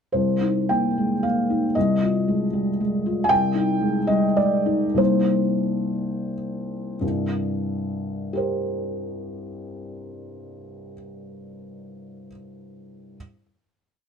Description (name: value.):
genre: neoclassical minimalist piano.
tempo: 84-120 BPM.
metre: 3/4.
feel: rubato.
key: C minor.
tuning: A4 = 443 Hz.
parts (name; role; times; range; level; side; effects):
felt-muted upright piano; solo; 0.1-13.2 s; C2 to Ab5; -22 LUFS; equal; none.
room: light reverb.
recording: dark, warm production.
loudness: -20 LUFS.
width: side -7 dB against mid.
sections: 0.1-7.0 A section; 7.0-10.9 final chord.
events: slowing down 2.5-7.0.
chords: 0.1 Cm7; 1.8 Fm7/C; 3.3 Abmaj7/C; 5.0 Cm7; 7.0 C5.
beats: | 0.14 0.69 1.23 | 1.75 2.29 2.80 | 3.30 3.81 4.37 | 4.99 5.65 6.32 | 7.02 7.67 8.33 | 8.98 9.63 10.29.